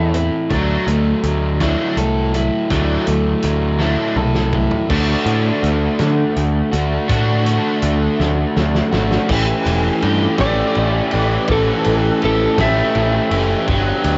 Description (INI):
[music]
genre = indie rock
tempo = 55 BPM (dotted quarters)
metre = 6/8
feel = straight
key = unclear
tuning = A4 = 440 Hz
[part]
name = lightly driven lead guitar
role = melody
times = 0.0-0.2, 10.4-13.4 s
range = A4 to E5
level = -23 LUFS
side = equal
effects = cassette tape
[part]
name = cranked stack guitar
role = riff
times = 0.0-14.2 s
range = E3 to G4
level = -25 LUFS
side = equal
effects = overdrive, ensemble chorus, cassette tape, tape echo
[part]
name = overdriven electric guitar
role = riff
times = 0.0-14.2 s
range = E3 to A4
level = -22 LUFS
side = equal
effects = cassette tape
[part]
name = modern bright picked electric bass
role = bass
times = 0.0-14.2 s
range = E1 to D3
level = -21 LUFS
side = equal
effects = none
[part]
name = loose indie drum kit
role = drums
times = 0.1-14.2 s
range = crash cymbal, hi-hat, kick drum, ride cymbal, snare drum, toms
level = -27 LUFS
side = equal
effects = cassette tape
[part]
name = synth chime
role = second line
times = 10.4-13.4 s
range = A5 to E6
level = -34 LUFS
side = equal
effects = ensemble chorus, cassette tape
[sound]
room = light reverb, studio ambience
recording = home recording on cassette, nothing above 7.7 kHz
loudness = -17 LUFS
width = mono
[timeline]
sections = 0.0-4.9 A section; 4.9-9.3 B section; 9.3-14.2 C section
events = drum fill 3.8-4.9, 8.2-9.3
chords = 0.0 Am; 0.5 Dadd9; 4.9 D; 9.3 A7sus4